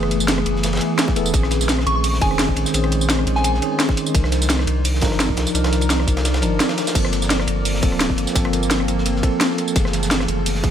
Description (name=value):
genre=liquid drum and bass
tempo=171 BPM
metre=4/4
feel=swing 53% on 16ths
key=G minor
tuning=A4 = 440 Hz
part: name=tine electric piano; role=accompaniment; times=0.0-10.7 s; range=Eb3 to Bb4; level=-23 LUFS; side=equal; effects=medium stereo tremolo, tape echo
part: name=shimmering ambient pad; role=sustained chords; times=0.0-10.7 s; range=Eb3 to D5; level=-27 LUFS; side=left 1 dB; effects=chorus, built-in reverb, sidechain pumping
part: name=saturated sub bass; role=bass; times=0.0-10.7 s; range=D1 to C#2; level=-22 LUFS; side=equal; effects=none
part: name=crunchy breakbeat drum kit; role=drums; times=0.0-10.7 s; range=hi-hat, ride cymbal, snare drum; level=-28 LUFS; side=equal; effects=high-pass filter on cymbals, high-pass filter on hats, high-pass filter on snare, high-pass filter on room
part: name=drum and bass drum kit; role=drums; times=0.0-10.7 s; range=crash cymbal, hi-hat, rim click, snare drum, tambourine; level=-22 LUFS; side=right 1 dB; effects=none
part: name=electronic kick drum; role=drums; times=1.1-10.7 s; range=none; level=-20 LUFS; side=equal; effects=none
part: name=soft synth bell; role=melody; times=1.9-3.5 s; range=Ab5 to Db6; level=-24 LUFS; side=right 1 dB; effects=chorus, ping-pong delay
room=light reverb, studio reverb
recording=none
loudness=-16 LUFS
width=side -9 dB against mid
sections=0.0-7.0 A section; 7.0-10.7 A section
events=drop 0.0-7.0, 7.0-10.7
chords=0.0 F#m11; 1.3 Bbm11; 4.1 Cm11; 7.0 Gm11; 9.8 F#m11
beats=0.28 0.64 0.99 | 1.34 1.69 2.04 2.39 | 2.74 3.09 3.44 3.79 | 4.14 4.50 4.85 5.20 | 5.55 5.90 6.25 6.60 | 6.95 7.30 7.65 8.00 | 8.36 8.71 9.06 9.41 | 9.76 10.11 10.46